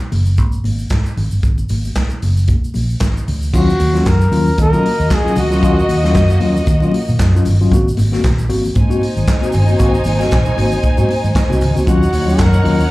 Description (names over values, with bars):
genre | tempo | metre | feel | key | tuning
disco | 115 BPM | 4/4 | swing 56% on 16ths | Eb dorian | A4 = 440 Hz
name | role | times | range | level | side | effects
congas | percussion | 0.0-12.9 s | none | -26 LUFS | left 1 dB | none
fingered electric bass | bass | 0.1-12.8 s | Gb1 to Eb3 | -15 LUFS | equal | none
vintage drum kit | drums | 0.1-12.8 s | crash cymbal, handclaps, hi-hat, kick drum, snare drum | -18 LUFS | equal | none
tube shaker | percussion | 0.3-12.9 s | none | -39 LUFS | right 2 dB | none
breathy flugelhorn | melody | 3.5-6.4, 11.9-12.9 s | Gb4 to Bb4 | -19 LUFS | equal | slapback echo
mellow tine electric piano | accompaniment | 3.5-12.8 s | Ab2 to Gb4 | -18 LUFS | left 2 dB | medium stereo tremolo, slapback echo
warm symphonic violin section | second line | 4.6-12.9 s | Bb3 to Ab5 | -21 LUFS | equal | slapback echo
room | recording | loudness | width
little or no reverb | live gig heard through the venue's PA, club reverb | -12 LUFS | side -19 dB against mid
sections
0.0-3.5 A section; 3.5-12.9 B section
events
none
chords
0.0 N.C.; 3.5 Ebm7; 7.7 Ab9; 11.9 Ebm7